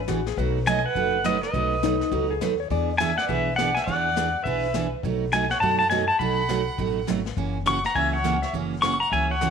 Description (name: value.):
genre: country, western swing.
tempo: 206 BPM.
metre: 4/4.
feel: swing 62% on 8ths.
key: B mixolydian.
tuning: A4 = 445 Hz.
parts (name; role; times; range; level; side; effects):
clean lap steel guitar; second line; 0.0-2.9 s; D#4 to D5; -28 LUFS; left 16 dB; none.
upright bass; bass; 0.0-9.5 s; F#1 to F#2; -30 LUFS; left 3 dB; none.
picked steel-string acoustic guitar; accompaniment; 0.1-9.5 s; B2 to G#4; -27 LUFS; right 10 dB; none.
vintage brush drum kit; drums; 0.1-9.5 s; brushed snare drum, hi-hat, kick drum, snare drum; -36 LUFS; left 10 dB; none.
pedal steel guitar; melody; 0.7-9.5 s; D#5 to C#6; -24 LUFS; left 2 dB; slapback echo.
rich fiddle; second line; 0.7-9.5 s; B4 to F#5; -32 LUFS; right 10 dB; none.
room: moderate echo chamber reverb, RT60 1.4 s, small room ambience.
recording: 1960s-style stereo with parts hard left and right.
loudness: -21 LUFS.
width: side -6 dB against mid.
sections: 0.0-9.5 A section.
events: none.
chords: 0.4 B7; 2.7 E7; 5.0 B7; 7.4 F#7.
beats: 0.08 | 0.37 0.66 0.95 1.25 | 1.54 1.83 2.12 2.41 | 2.70 3.00 3.29 3.58 | 3.87 4.16 4.45 4.74 | 5.04 5.33 5.62 5.91 | 6.20 6.49 6.79 7.08 | 7.37 7.66 7.95 8.24 | 8.54 8.83 9.12 9.41.